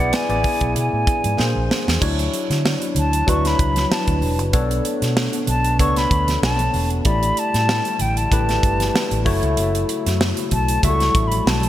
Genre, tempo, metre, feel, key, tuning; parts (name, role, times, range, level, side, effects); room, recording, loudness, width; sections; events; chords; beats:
polished 1980s jazz-funk pop; 95 BPM; 4/4; swing 54% on 16ths; A4 = 440 Hz
hollow concert flute; melody; 0.0-11.7 s; F#5 to C#6; -23 LUFS; equal; digital delay
barky tine electric piano; accompaniment; 0.0-11.7 s; F#3 to E5; -24 LUFS; left 2 dB; wide subtle chorus
vintage muted fingered electric bass; bass; 0.0-11.7 s; E1 to D3; -21 LUFS; equal
crisp fusion drum kit; drums; 0.1-11.7 s; crash cymbal, hi-hat, kick drum, snare drum; -22 LUFS; right 1 dB
congas; percussion; 0.1-11.7 s; -32 LUFS; right 3 dB
hollow soft pad; sustained chords; 2.5-11.7 s; B2 to C#5; -31 LUFS; right 1 dB
light reverb, small room reverb; bright 1980s-style digital production; -17 LUFS; side -13 dB against mid
0.0-2.0 A section; 2.0-11.7 B section
drum fill 1.4-2.0
0.0 E7; 1.4 A#9; 2.0 Dmaj9; 4.5 Bm9; 7.1 A7sus4; 9.3 F#m7
0.13 0.76 1.39 | 2.02 2.65 3.28 3.91 | 4.54 5.17 5.80 6.43 | 7.06 7.69 8.32 8.95 | 9.58 10.21 10.84 11.46